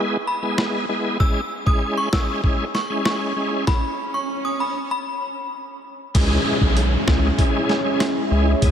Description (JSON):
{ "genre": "dancehall", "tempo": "97 BPM", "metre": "4/4", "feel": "straight", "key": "C# minor", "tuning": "A4 = 438 Hz", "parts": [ { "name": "bright tonewheel organ", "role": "accompaniment", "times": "0.0-8.7 s", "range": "G#3 to G#4", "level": "-24 LUFS", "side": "equal", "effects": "overdrive, chorus vibrato, fast rotary speaker, sidechain pumping" }, { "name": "synth chime", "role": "melody", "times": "0.3-5.3 s", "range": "B5 to E6", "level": "-26 LUFS", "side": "left 1 dB", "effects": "ensemble chorus, tremolo, analog delay" }, { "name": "boom bap sampler-style drum kit", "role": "drums", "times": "0.6-8.7 s", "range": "crash cymbal, hi-hat, kick drum, rim click, snare drum", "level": "-22 LUFS", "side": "equal", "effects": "none" }, { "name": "swell and downlifter", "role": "sound effects", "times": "2.9-8.7 s", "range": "none", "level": "-29 LUFS", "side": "right 1 dB", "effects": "none" }, { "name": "round analog bass", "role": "bass", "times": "6.1-8.7 s", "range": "B1 to E2", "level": "-19 LUFS", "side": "equal", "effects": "none" }, { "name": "lush unison pad", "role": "sustained chords", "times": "6.2-8.7 s", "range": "G#3 to E4", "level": "-24 LUFS", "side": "equal", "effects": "chorus, sidechain pumping" } ], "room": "moderate huge ambient reverb, RT60 4.2 s", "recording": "dreamy mix soaked in reverb", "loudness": "-19 LUFS", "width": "side -9 dB against mid", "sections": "0.0-6.1 A section; 6.1-8.7 B section", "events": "swell 2.9-6.1; stop 3.7-6.1", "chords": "0.0 E; 1.2 C#m; 3.7 N.C.; 6.1 C#m" }